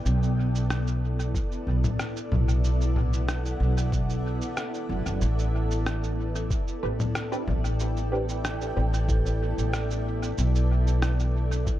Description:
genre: ambient dub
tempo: 93 BPM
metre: 4/4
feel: straight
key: unclear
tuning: A4 = 440 Hz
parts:
  - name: granular cloud pad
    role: sustained chords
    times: 0.0-11.8 s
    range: B3 to G5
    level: -32 LUFS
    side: equal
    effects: built-in reverb
  - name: upright bass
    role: bass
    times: 0.0-11.6 s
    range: F#1 to B1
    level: -25 LUFS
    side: equal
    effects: none
  - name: electronic cabasa, rim click and congas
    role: drums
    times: 0.1-11.8 s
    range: none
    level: -33 LUFS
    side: left 1 dB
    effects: dub echo
  - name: electronic kick drum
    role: drums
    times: 1.3-11.8 s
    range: none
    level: -28 LUFS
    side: equal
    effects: none
  - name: filtered dub chord stab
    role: stabs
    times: 6.8-9.0 s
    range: C4 to B4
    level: -34 LUFS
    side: right 2 dB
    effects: phaser, wide subtle chorus, dub echo
room: digital ambience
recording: echo-heavy mix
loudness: -24 LUFS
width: side -14 dB against mid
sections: 0.0-11.8 A section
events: none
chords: 0.1 Bm7; 5.2 Am11; 10.4 Bm7

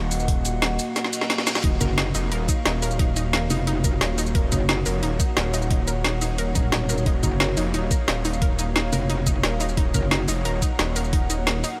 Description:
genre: dark technical drum and bass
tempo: 177 BPM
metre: 4/4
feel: straight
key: Eb minor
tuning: A4 = 440 Hz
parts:
  - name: dark analog pad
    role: sustained chords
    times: 0.0-11.8 s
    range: Bb3 to Gb5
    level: -32 LUFS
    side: equal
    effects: chorus, vintage 12-bit sampler grit, sidechain pumping
  - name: detuned saw bass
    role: bass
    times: 0.0-11.6 s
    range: Eb1 to F1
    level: -28 LUFS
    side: equal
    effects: chorus, overdrive, sidechain pumping
  - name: drum and bass drum kit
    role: drums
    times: 0.1-11.7 s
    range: hi-hat, shaker, snare drum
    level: -28 LUFS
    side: equal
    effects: overdrive, small room ambience
  - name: electronic kick drum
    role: drums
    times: 0.3-11.2 s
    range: none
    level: -25 LUFS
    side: equal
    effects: overdrive, small room ambience
  - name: reverse cymbal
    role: sound effects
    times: 1.1-1.6 s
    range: none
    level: -39 LUFS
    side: equal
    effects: none
  - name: analog pluck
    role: arpeggios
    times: 1.6-11.7 s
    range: Eb4 to Bb4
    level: -33 LUFS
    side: equal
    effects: chorus, cassette tape, sidechain pumping, diffuse ambient delay
  - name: metallic wobble bass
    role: bass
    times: 1.8-10.3 s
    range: Eb1 to Gb1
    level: -26 LUFS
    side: equal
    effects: chorus
room: light reverb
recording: none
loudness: -23 LUFS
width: mono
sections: 0.0-11.8 A section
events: drum fill 1.0-1.6; reverse cymbal 1.1-1.6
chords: 0.0 Ebmadd9

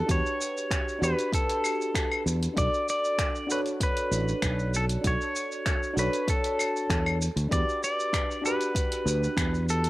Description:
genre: sunset chillout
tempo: 97 BPM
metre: 4/4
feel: straight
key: B minor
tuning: A4 = 441 Hz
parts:
  - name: pedal steel guitar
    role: melody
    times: 0.0-9.9 s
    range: A4 to D5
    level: -29 LUFS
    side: equal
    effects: cassette tape, tape echo
  - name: mellow FM electric piano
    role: accompaniment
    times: 0.0-9.9 s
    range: D4 to D5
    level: -32 LUFS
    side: equal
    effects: chorus, auto-pan, cassette tape
  - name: fingered electric bass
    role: bass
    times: 0.1-9.9 s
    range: A1 to E2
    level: -27 LUFS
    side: equal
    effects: none
  - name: deep house drum kit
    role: drums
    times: 0.1-9.9 s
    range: claves, finger snaps, hi-hat, shaker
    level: -33 LUFS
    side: equal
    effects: none
  - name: electronic kick drum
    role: drums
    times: 0.1-9.5 s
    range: none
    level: -30 LUFS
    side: equal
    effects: none
room: light reverb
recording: home recording on cassette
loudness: -25 LUFS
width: side -18 dB against mid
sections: 0.0-9.9 A section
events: none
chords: 0.0 Em7; 2.6 Bm7; 7.2 Em7

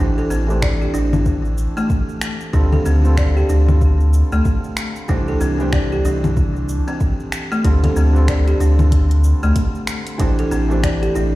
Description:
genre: organic downtempo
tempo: 94 BPM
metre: 4/4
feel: swing 60% on 16ths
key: D minor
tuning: A4 = 439 Hz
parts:
  - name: felt-muted upright piano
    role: accompaniment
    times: 0.0-11.4 s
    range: D3 to C5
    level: -25 LUFS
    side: right 1 dB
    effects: sidechain pumping, low-pass filter, ping-pong delay
  - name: buzzing kalimba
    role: arpeggios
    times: 0.0-11.3 s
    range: A3 to D5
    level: -23 LUFS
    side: equal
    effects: ping-pong delay
  - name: warm sub bass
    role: bass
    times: 0.0-11.4 s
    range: A1 to D2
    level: -16 LUFS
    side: equal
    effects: sidechain pumping
  - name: afro-pop drum kit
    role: drums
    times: 0.2-11.3 s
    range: congas, finger snaps, hi-hat, shaker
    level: -25 LUFS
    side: left 2 dB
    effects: none
  - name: electronic kick drum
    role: drums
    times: 0.6-11.0 s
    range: none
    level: -19 LUFS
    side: equal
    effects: overdrive
room: light reverb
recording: played on a big sound system in a bare room, stone room reverb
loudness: -15 LUFS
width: side -17 dB against mid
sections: 0.0-11.4 A section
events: filter sweep on felt piano 0.0-11.4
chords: 0.0 Am7; 2.5 Dm; 5.1 C; 7.6 Dm; 10.2 Am7

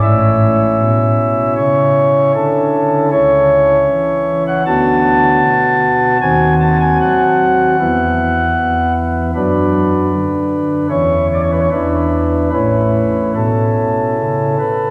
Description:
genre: classical, chorale-style piece for pipe organ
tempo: 77 BPM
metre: 4/4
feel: rubato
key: A major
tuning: A4 = 444 Hz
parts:
  - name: pipe organ, flutes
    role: solo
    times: 0.0-14.9 s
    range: A1 to A5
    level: -14 LUFS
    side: equal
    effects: none
room: wet church reverb, RT60 3.4 s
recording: none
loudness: -14 LUFS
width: mono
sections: 0.0-14.9 A section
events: none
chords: 0.0 A; 3.1 C#madd11; 4.7 Bm/D; 6.2 D#dim7; 7.8 E5; 9.3 D/F#; 10.9 C#m7/E; 11.7 E5; 12.5 A

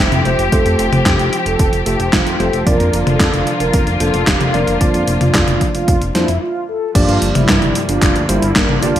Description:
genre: italo disco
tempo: 112 BPM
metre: 4/4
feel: straight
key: unclear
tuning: A4 = 440 Hz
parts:
  - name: mellow synth brass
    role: melody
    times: 0.0-9.0 s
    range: G3 to Bb4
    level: -20 LUFS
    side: equal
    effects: chorus, ping-pong delay
  - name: rich symphonic string section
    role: sustained chords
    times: 0.0-9.0 s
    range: D3 to G4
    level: -21 LUFS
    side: left 1 dB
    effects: vintage 12-bit sampler grit
  - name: chorused synth bass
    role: bass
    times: 0.0-9.0 s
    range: F1 to G2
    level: -20 LUFS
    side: equal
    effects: none
  - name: clean 12-bit digital drum machine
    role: drums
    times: 0.1-9.0 s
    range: crash cymbal, handclaps, hi-hat, snare drum, toms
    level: -17 LUFS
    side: left 1 dB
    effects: overdrive, gated reverb
  - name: tine electric piano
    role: stabs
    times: 0.3-9.0 s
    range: G2 to D5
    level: -21 LUFS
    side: right 2 dB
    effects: none
  - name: electronic kick drum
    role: drums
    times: 0.5-8.7 s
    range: none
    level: -17 LUFS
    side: equal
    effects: overdrive
room: light reverb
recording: bright 1980s-style digital production, vinyl crackle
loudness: -12 LUFS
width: side -11 dB against mid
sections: 0.0-7.0 A section; 7.0-9.0 B section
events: break 6.4-7.0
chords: 0.0 Fadd9; 2.7 Bb/F; 7.0 Gm7

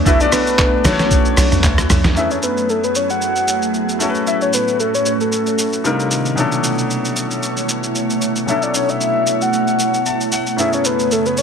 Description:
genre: amapiano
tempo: 114 BPM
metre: 4/4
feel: swing 55% on 16ths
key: unclear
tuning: A4 = 445 Hz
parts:
  - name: clear concert grand piano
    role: accompaniment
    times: 0.0-11.4 s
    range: F#2 to A5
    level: -22 LUFS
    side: left 3 dB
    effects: none
  - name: glassy FM pad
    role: sustained chords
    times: 0.0-11.4 s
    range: F#2 to C#5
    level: -21 LUFS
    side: right 3 dB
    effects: ensemble chorus, built-in reverb, sidechain pumping
  - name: tight log drum bass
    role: bass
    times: 0.0-2.2 s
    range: B1 to D2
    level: -18 LUFS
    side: equal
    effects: none
  - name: soft octave-layered synth lead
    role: melody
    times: 0.1-11.4 s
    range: A4 to F#5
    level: -19 LUFS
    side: left 2 dB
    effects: chorus, ping-pong delay
  - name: lo-fi sampler-style drum kit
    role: drums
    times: 0.1-11.4 s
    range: handclaps, hi-hat, kick drum, rim click, shaker, snare drum, toms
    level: -19 LUFS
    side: right 1 dB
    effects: none
room: light reverb, digital ambience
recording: none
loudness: -14 LUFS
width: side -6 dB against mid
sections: 0.0-2.2 A section; 2.2-11.4 B section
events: drop 0.0-2.2; grand piano fill 9.8-10.6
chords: 0.0 Bm11; 2.2 F#m11; 4.0 A6; 5.8 Cm11; 6.4 Bm11; 10.6 F#m11

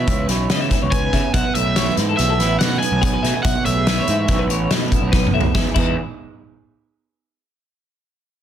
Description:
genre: math rock and midwest emo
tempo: 143 BPM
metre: 5/4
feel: straight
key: E major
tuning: A4 = 441 Hz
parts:
  - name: crunchy overdriven guitar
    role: melody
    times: 0.0-4.5 s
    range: E5 to G#5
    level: -23 LUFS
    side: right 2 dB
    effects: digital delay
  - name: electric guitar through a small old amp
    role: accompaniment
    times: 0.0-6.0 s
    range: E2 to G#4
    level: -25 LUFS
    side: right 9 dB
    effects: spring reverb
  - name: twelve-string electric guitar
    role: arpeggios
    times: 0.0-5.9 s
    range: E4 to F#5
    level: -26 LUFS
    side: left 8 dB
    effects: tremolo
  - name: fuzz picked electric bass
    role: bass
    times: 0.0-6.0 s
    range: A1 to C#3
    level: -22 LUFS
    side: equal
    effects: overdrive
  - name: loose indie drum kit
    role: drums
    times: 0.1-5.9 s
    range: crash cymbal, hi-hat, kick drum, snare drum, toms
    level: -20 LUFS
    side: equal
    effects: none
room: light reverb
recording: dense, heavily limited modern master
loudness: -16 LUFS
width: side -10 dB against mid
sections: 0.0-5.5 A section; 5.5-7.6 B section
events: drum fill 5.1-5.5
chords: 0.0 C#m7; 1.3 B7sus4; 5.5 Emaj7

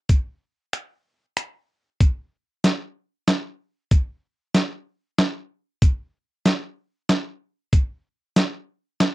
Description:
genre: country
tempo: 94 BPM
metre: 3/4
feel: straight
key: none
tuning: none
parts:
  - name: dusty soul sampler-style drum kit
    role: drums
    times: 0.1-9.1 s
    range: finger snaps, hi-hat, kick drum, snare drum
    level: -18 LUFS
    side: equal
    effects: none
room: light reverb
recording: dry, close 1970s-style studio recording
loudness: -22 LUFS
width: side -18 dB against mid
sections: 0.0-9.1 A section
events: none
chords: none

